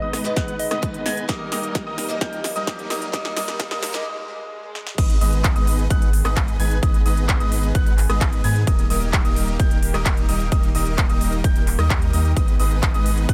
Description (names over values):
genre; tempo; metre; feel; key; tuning
EDM, festival progressive house; 130 BPM; 4/4; straight; G# minor; A4 = 444 Hz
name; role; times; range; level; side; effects
soft struck synth lead; melody; 0.0-1.3 s; D#5; -34 LUFS; equal; chorus, cassette tape, delay
picked acoustic archtop guitar; accompaniment; 0.0-4.1 s; G#2 to B4; -33 LUFS; equal; vintage 12-bit sampler grit, sidechain pumping, delay
lush unison pad; sustained chords; 0.0-13.3 s; D#3 to B4; -35 LUFS; equal; chorus, sidechain pumping
warm concert grand piano; arpeggios; 0.0-13.3 s; D#6 to G#6; -33 LUFS; equal; sidechain pumping, low-pass filter, delay
dense compressed supersaw; riff; 0.0-13.3 s; G3 to G#5; -32 LUFS; equal; sidechain pumping, low-pass filter, delay
riser and swell; sound effects; 0.6-5.0 s; none; -42 LUFS; equal; none
big-room dance drum kit; drums; 0.1-13.3 s; crash cymbal, handclaps, hi-hat, rim click, snare drum; -30 LUFS; equal; overdrive, high-pass filter on hats, high-pass filter on snare, high-pass filter on cymbals
electronic kick drum; drums; 0.4-13.3 s; none; -22 LUFS; equal; overdrive
saturated sub bass; bass; 5.0-13.3 s; D#1 to G#2; -24 LUFS; equal; sidechain pumping
room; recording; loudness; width
little or no reverb; high-pass filter; -20 LUFS; mono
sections
0.0-5.0 A section; 5.0-13.3 B section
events
build-up 0.0-5.0; drum fill 0.0-4.1, 4.8; filter sweep on supersaw synth 0.0-5.0; filter sweep 0.0-5.0; break 4.1-5.0; swell 4.1-5.0; drop 5.0-13.3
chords
0.0 G#m; 1.3 D#; 5.0 G#m; 8.7 D#; 12.4 G#m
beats
0.37 0.83 | 1.29 1.75 2.21 2.67 | 3.13 3.60 4.06 4.52 | 4.98 5.44 5.90 6.37 | 6.83 7.29 7.75 8.21 | 8.67 9.13 9.60 10.06 | 10.52 10.98 11.44 11.90 | 12.37 12.83 13.29